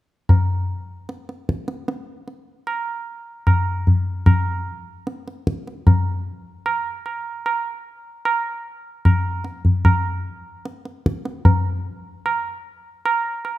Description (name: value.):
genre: indian classical.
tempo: free time.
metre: none.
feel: none.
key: none.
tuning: none.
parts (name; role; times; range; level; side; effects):
tabla; percussion; 0.3-13.6 s; none; -18 LUFS; equal; none.
room: light reverb.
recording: none.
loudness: -19 LUFS.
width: side -15 dB against mid.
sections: 0.3-13.6 A section.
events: none.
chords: none.